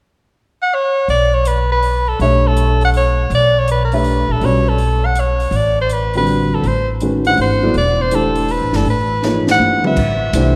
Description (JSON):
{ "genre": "modal jazz", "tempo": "162 BPM", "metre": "3/4", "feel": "swing 66% on 8ths", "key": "unclear", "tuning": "A4 = 435 Hz", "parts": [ { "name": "warm soprano saxophone", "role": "melody", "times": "0.6-10.6 s", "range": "A4 to F#5", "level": "-18 LUFS", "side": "equal", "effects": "none" }, { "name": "upright bass", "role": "bass", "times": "1.1-10.6 s", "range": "E1 to C2", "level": "-19 LUFS", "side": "equal", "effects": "none" }, { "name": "compact cocktail drum kit", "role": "drums", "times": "1.1-10.4 s", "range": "crash cymbal, hi-hat, kick drum, ride cymbal, snare drum, toms", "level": "-29 LUFS", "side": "equal", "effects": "none" }, { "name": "dark concert grand piano", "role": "accompaniment", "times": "2.2-10.6 s", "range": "D3 to E5", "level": "-21 LUFS", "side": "equal", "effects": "none" } ], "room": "wet church reverb, RT60 3.0 s", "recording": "recorded in a church or concert hall", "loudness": "-15 LUFS", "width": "mono", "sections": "0.0-1.1 A section; 1.1-10.0 B section", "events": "drum fill 9.2-10.0", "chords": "0.0 N.C.; 1.1 Bm11; 5.5 Am11" }